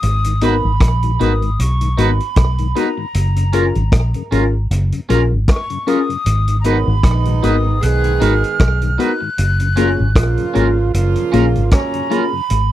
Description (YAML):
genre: lovers rock reggae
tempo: 77 BPM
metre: 4/4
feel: swing 57% on 16ths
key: unclear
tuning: A4 = 441 Hz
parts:
  - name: breathy mellow jazz flute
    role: melody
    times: 0.0-12.7 s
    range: A#5 to F#6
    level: -23 LUFS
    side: right 1 dB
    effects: tape echo
  - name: vintage muted fingered electric bass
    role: bass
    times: 0.0-12.7 s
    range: F#1 to B1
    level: -16 LUFS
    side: equal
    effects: none
  - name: vintage drum kit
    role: drums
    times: 0.0-12.7 s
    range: hi-hat, kick drum, rim click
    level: -17 LUFS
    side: equal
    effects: slapback echo
  - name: mellow tonewheel organ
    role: accompaniment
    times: 0.3-12.4 s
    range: F#2 to F#4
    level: -25 LUFS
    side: left 7 dB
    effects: overdrive, chorus vibrato, slow rotary speaker
  - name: mellow FM electric piano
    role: accompaniment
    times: 0.4-12.3 s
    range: A#3 to A#4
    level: -18 LUFS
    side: left 4 dB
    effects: chorus, slapback echo
  - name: twangy electric guitar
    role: stabs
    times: 0.4-12.2 s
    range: C#4 to B4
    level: -22 LUFS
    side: right 5 dB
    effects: harmonic tremolo
  - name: mellow horn section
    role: second line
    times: 6.6-12.3 s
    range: G#2 to G#4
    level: -21 LUFS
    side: right 7 dB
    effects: none
room: little or no reverb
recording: dry, close 1970s-style studio recording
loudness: -13 LUFS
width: side -13 dB against mid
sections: 0.0-12.7 A section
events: none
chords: 0.0 G#m7; 3.1 F#maj7; 6.3 G#m7; 9.4 F#maj7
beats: | 0.03 0.81 1.59 2.37 | 3.14 3.92 4.70 5.48 | 6.26 7.04 7.82 8.60 | 9.38 10.16 10.94 11.72 | 12.50